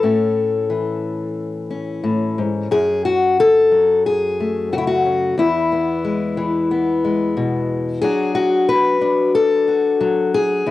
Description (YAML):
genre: folk, solo fingerstyle acoustic guitar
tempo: 90 BPM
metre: 4/4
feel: straight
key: unclear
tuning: A4 = 440 Hz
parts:
  - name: fingerpicked steel-string acoustic guitar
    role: solo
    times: 0.0-10.7 s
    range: E2 to B4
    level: -16 LUFS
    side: left 2 dB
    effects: none
room: light reverb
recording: home recording on cassette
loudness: -16 LUFS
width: side -15 dB against mid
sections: 0.0-2.7 A section; 2.7-10.7 B section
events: none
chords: 0.0 A; 2.7 F#m; 5.4 E; 8.0 D6/F#